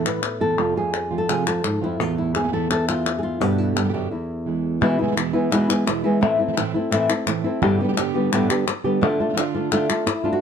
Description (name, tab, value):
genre	flamenco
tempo	171 BPM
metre	4/4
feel	straight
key	unclear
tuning	A4 = 440 Hz
part	flamenco guitar	melody	0.0-10.4 s	E2 to B4	-21 LUFS	left 1 dB	none
part	flamenco guitar	stabs	0.0-10.4 s	E2 to G4	-26 LUFS	right 8 dB	none
part	palmas hand claps	percussion	0.1-10.2 s	none	-26 LUFS	left 6 dB	none
room	light reverb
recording	dark, warm production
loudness	-19 LUFS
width	side -7 dB against mid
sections	0.0-4.8 A section; 4.8-10.4 B section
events	break 4.1-4.8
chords	0.0 Esus4; 0.6 F; 2.0 Esus4; 3.4 G; 4.1 E; 6.2 Am; 7.6 Gadd9; 9.0 Dm